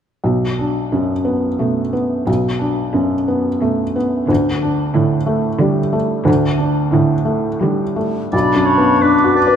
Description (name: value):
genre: cinematic, emotional film score for orchestra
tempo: 89 BPM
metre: 3/4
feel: rubato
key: B minor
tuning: A4 = 440 Hz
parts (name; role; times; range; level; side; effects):
- felt-muted upright piano; accompaniment; 0.2-9.6 s; B1 to B4; -16 LUFS; left 1 dB; none
- rich symphonic cello section; bass; 0.2-8.2 s; B2 to D3; -21 LUFS; right 5 dB; none
- clear oboe; second line; 8.3-9.6 s; B4 to D5; -18 LUFS; left 2 dB; none
- flute section; second line; 8.3-9.6 s; B5 to D6; -17 LUFS; right 3 dB; none
- warm clarinet; second line; 8.3-9.6 s; D4 to B4; -16 LUFS; left 3 dB; none
room: wet scoring stage reverb, RT60 1.9 s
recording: minimal, uncompressed stereo recording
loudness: -14 LUFS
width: side -8 dB against mid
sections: 0.3-8.3 A section; 8.3-9.6 B section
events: none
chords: 0.3 Bm; 4.3 D5; 8.3 Bm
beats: | 0.25 0.93 1.60 | 2.27 2.95 3.62 | 4.29 4.95 5.61 | 6.27 6.94 7.62 | 8.33 9.01